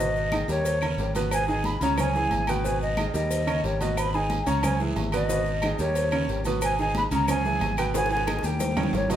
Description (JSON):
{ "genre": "latin, salsa", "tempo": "181 BPM", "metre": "4/4", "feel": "straight", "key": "G# harmonic minor", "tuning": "A4 = 440 Hz", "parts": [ { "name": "breathy mellow jazz flute", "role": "melody", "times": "0.0-9.2 s", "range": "C#5 to B5", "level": "-28 LUFS", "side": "equal", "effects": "none" }, { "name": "bright upright piano", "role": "accompaniment", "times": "0.0-9.2 s", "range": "B2 to C#5", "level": "-29 LUFS", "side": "right 3 dB", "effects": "none" }, { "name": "modern bright fingered electric bass", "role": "bass", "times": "0.0-9.2 s", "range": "G#1 to D#2", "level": "-28 LUFS", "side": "equal", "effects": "none" }, { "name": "maracas", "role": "percussion", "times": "0.0-9.2 s", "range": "none", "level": "-41 LUFS", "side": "left 4 dB", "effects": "none" }, { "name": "congas", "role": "percussion", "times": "0.2-9.2 s", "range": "none", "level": "-35 LUFS", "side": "left 1 dB", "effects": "none" }, { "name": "agogo bells and timbales", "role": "percussion", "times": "0.3-9.2 s", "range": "none", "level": "-35 LUFS", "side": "right 4 dB", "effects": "none" }, { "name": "claves", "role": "percussion", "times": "0.3-8.9 s", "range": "none", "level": "-41 LUFS", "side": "left 4 dB", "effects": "none" }, { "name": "cowbell and bongos", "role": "percussion", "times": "0.3-9.2 s", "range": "none", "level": "-35 LUFS", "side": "left 3 dB", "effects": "none" }, { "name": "guiro", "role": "percussion", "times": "0.3-9.2 s", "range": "none", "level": "-44 LUFS", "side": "right 3 dB", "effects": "none" } ], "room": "moderate large studio reverb, RT60 1.1 s", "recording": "band playing live in one room", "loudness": "-23 LUFS", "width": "side -10 dB against mid", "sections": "0.0-9.2 A section", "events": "drum fill 7.9-9.2", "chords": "0.0 G#m; 0.7 D#7; 1.3 G#m; 2.0 C#m; 2.6 G#m; 3.3 D#7; 4.0 G#m; 4.6 C#m; 5.3 G#m; 6.0 D#7; 6.6 G#m; 7.3 C#m; 7.9 G#m; 8.6 D#7", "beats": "0.32 0.65 0.98 | 1.32 1.65 1.98 2.31 | 2.64 2.97 3.31 3.64 | 3.97 4.30 4.63 4.96 | 5.29 5.63 5.96 6.29 | 6.62 6.95 7.28 7.61 | 7.95 8.28 8.61 8.94" }